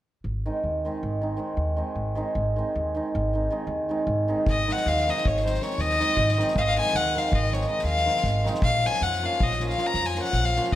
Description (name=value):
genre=balkan folk, Balkan wedding band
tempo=316 BPM (eighths)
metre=11/8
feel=straight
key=Ab mixolydian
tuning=A4 = 440 Hz
part: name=upright bass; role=bass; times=0.2-10.8 s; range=Ab1 to F2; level=-28 LUFS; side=equal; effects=none
part: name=hammered dulcimer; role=accompaniment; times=0.5-10.8 s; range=Eb3 to F4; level=-27 LUFS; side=right 2 dB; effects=none
part: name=warm violin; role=melody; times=4.5-10.8 s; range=C5 to Bb5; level=-25 LUFS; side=left 3 dB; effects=none
part: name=soft-mallet drum kit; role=percussion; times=4.5-10.8 s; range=kick drum, snare drum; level=-30 LUFS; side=left 1 dB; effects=none
room=light reverb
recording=none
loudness=-22 LUFS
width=side -13 dB against mid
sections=0.2-4.5 A section; 4.5-10.8 B section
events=none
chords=0.2 Ab; 8.6 Bbm